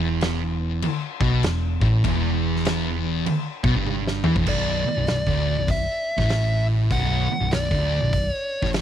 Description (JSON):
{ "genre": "stoner and doom metal", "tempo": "99 BPM", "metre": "4/4", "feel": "swing 63% on 8ths", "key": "B minor", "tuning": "A4 = 439 Hz", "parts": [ { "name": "thick fuzz guitar", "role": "riff", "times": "0.0-8.8 s", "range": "B1 to E3", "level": "-26 LUFS", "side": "left 7 dB", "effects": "distortion" }, { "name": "thick fuzz guitar", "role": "riff", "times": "0.0-8.8 s", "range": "B1 to E3", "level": "-25 LUFS", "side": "right 7 dB", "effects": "distortion" }, { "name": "hollow-body short-scale picked electric bass", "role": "bass", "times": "0.0-8.8 s", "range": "B0 to E2", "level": "-26 LUFS", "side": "equal", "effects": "overdrive" }, { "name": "oversized low-tuned drum kit", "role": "drums", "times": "0.2-8.8 s", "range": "crash cymbal, hi-hat, kick drum, snare drum, toms", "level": "-28 LUFS", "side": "equal", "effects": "none" }, { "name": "fuzz lead guitar", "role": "melody", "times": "4.5-8.7 s", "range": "D5 to F#5", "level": "-26 LUFS", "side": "left 1 dB", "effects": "distortion, tape echo" } ], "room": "little or no reverb", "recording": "dry, close 1970s-style studio recording", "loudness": "-20 LUFS", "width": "side -10 dB against mid", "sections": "0.0-4.5 A section; 4.5-8.8 B section", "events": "drum fill 3.9-4.5", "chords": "0.0 E5; 4.5 Bm" }